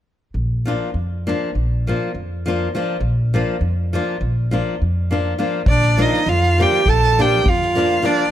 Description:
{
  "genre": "balkan folk, Balkan wedding band",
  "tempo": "203 BPM (eighths)",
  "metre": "9/8",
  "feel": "straight",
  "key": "Bb major",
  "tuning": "A4 = 440 Hz",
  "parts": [
    { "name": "upright bass", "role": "bass", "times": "0.3-8.0 s", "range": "Bb1 to F2", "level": "-20 LUFS", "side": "equal", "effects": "none" },
    { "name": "flamenco guitar", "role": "accompaniment", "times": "0.7-8.2 s", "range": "F3 to F4", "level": "-22 LUFS", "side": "left 2 dB", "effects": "none" },
    { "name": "rich violin", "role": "melody", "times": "5.7-8.3 s", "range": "D5 to A5", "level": "-18 LUFS", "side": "equal", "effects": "none" },
    { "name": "clear clarinet", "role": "second line", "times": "5.7-8.3 s", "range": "D4 to A4", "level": "-20 LUFS", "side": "right 4 dB", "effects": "none" },
    { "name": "soft-mallet drum kit", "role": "percussion", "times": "5.7-8.1 s", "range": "kick drum, snare drum", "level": "-22 LUFS", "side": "equal", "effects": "none" }
  ],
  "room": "light reverb",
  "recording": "close, detailed microphones",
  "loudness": "-16 LUFS",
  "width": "side -11 dB against mid",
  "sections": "0.3-5.7 A section; 5.7-8.3 B section",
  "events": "none",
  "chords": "0.3 Bb"
}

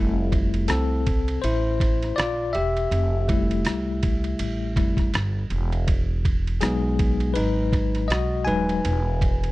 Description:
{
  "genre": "hip hop, jazz-hop",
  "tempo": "81 BPM",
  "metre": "4/4",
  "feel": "swing 58% on 16ths",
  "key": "unclear",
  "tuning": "A4 = 440 Hz",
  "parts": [
    { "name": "bell-like tine electric piano", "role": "accompaniment", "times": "0.0-9.5 s", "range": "F#3 to G#5", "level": "-25 LUFS", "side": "left 3 dB", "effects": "fast stereo tremolo" },
    { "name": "upright bass", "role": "bass", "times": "0.0-9.5 s", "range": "D#1 to C2", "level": "-25 LUFS", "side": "right 1 dB", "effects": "none" },
    { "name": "trip hop sampler-style drum kit", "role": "drums", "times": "0.3-9.5 s", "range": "hi-hat, kick drum, ride cymbal, rim click", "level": "-25 LUFS", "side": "right 1 dB", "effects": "none" }
  ],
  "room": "little or no reverb",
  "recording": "dry, close 1970s-style studio recording",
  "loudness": "-21 LUFS",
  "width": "side -18 dB against mid",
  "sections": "0.0-9.5 A section",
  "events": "tine electric piano solo 0.0-9.5",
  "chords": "0.0 Fmaj9; 5.5 Emaj9"
}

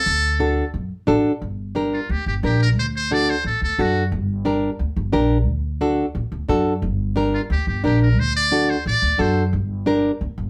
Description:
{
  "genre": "latin, cumbia",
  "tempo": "177 BPM",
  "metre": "4/4",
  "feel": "straight",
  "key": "G harmonic minor",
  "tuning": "A4 = 442 Hz",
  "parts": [
    { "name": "trumpet with metal mute", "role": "melody", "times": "0.0-4.1, 7.3-9.5 s", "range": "F4 to D5", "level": "-24 LUFS", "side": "equal", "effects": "none" },
    { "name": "upright bass", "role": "bass", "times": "0.1-10.5 s", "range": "G1 to F#2", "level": "-24 LUFS", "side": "equal", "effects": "none" },
    { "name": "nylon-string guitar", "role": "accompaniment", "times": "0.4-10.1 s", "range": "D4 to Bb4", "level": "-22 LUFS", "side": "equal", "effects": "none" }
  ],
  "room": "wet small room reverb, RT60 0.5 s",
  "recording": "band playing live in one room",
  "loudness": "-21 LUFS",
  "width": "mono",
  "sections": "0.0-1.4 A section; 1.4-10.5 B section",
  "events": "muted trumpet solo 0.0-1.4",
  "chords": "0.1 D; 1.4 Gm; 2.8 D; 4.1 Gm; 5.5 D; 6.8 Gm; 8.2 D; 9.5 Gm"
}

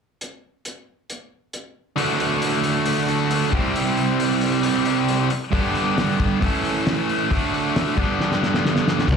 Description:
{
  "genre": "classic rock",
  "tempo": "135 BPM",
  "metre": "4/4",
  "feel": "straight",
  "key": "unclear",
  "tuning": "A4 = 437 Hz",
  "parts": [
    { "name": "cloth-damped thuddy drum kit", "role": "drums", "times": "0.2-9.2 s", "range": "crash cymbal, hi-hat, kick drum, snare drum", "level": "-26 LUFS", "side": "left 1 dB", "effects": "none" },
    { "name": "distorted electric guitar", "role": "riff", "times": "2.0-9.2 s", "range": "G2 to F#4", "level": "-22 LUFS", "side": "right 8 dB", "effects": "distortion" },
    { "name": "tight distorted guitar", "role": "riff", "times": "2.0-9.2 s", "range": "G2 to A4", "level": "-23 LUFS", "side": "left 11 dB", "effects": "distortion, slapback echo" },
    { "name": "fuzz picked electric bass", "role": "bass", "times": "9.1-9.2 s", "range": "D2", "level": "-17 LUFS", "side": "left 1 dB", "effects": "overdrive" }
  ],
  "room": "moderate club reverb, RT60 0.5 s",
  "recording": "live gig heard through the venue's PA, club reverb",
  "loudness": "-18 LUFS",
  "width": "side -6 dB against mid",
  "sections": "0.2-2.0 A section; 2.0-9.1 B section",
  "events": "drum fill 8.2-9.1",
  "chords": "0.2 N.C.; 2.0 D; 3.5 C; 5.5 G; 6.4 A; 7.3 D; 8.0 G"
}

